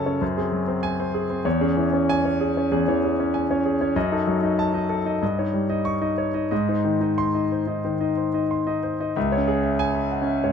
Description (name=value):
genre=classical, virtuoso piano study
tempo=93 BPM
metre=4/4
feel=uneven beats, rubato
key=C# minor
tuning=A4 = 441 Hz
part: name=warm concert grand piano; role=solo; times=0.0-10.5 s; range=C#2 to C#6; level=-21 LUFS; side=left 1 dB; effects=none
room=moderate studio reverb, RT60 0.7 s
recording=none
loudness=-21 LUFS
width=side -7 dB against mid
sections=0.0-9.2 A section; 9.2-10.5 B section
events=none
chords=0.2 G#7/F#; 1.5 C#m/E; 4.0 D#dim/F#; 5.2 D#7/G; 6.5 G#; 9.2 C#m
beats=0.21 0.83 | 1.45 2.08 2.70 3.33 | 3.95 4.58 5.21 5.85 | 6.51 7.18 7.84 8.50 | 9.16 9.79 10.42